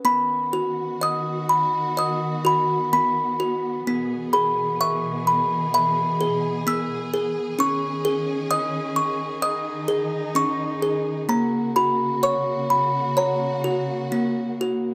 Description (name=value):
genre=children's music, lullaby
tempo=64 BPM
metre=4/4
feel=rubato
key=B major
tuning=A4 = 439 Hz
part: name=music box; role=melody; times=0.0-14.9 s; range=A#3 to E6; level=-24 LUFS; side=equal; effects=none
part: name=warm studio string section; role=sustained chords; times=0.0-14.9 s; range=B2 to G#4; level=-32 LUFS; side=equal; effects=none
room=little or no reverb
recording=close, detailed microphones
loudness=-23 LUFS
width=mono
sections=0.0-14.9 A section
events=none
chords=0.0 B; 3.9 E/B; 7.6 C#sus2; 11.3 F#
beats=| 0.04 1.01 1.97 2.92 | 3.87 4.80 5.73 6.67 | 7.59 8.51 9.43 10.36 | 11.30 12.23 13.16 14.12